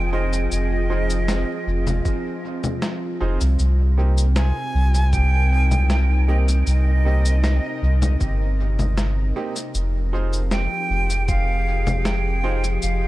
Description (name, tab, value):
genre	ambient dub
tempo	78 BPM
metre	4/4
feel	straight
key	F minor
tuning	A4 = 440 Hz
part	bright silver concert flute	melody	0.0-13.1 s	Eb5 to Ab5	-28 LUFS	right 2 dB	dub echo
part	airy breathy pad	sustained chords	0.0-13.1 s	C3 to Eb5	-29 LUFS	equal	chorus
part	soft dub sub bass	bass	0.0-13.1 s	F1 to C2	-19 LUFS	equal	none
part	clear upright piano	stabs	0.1-12.6 s	Bb3 to C5	-33 LUFS	right 3 dB	dub echo
part	electronic cabasa, snare drum and congas	drums	0.3-13.0 s	none	-29 LUFS	left 2 dB	dub echo
part	electronic kick drum	drums	2.1-11.4 s	none	-23 LUFS	equal	none
room	little or no reverb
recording	none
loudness	-18 LUFS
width	side -17 dB against mid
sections	0.0-13.1 A section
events	kick drops out 12.8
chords	0.0 Fm7; 3.6 Cm7; 9.7 Fm7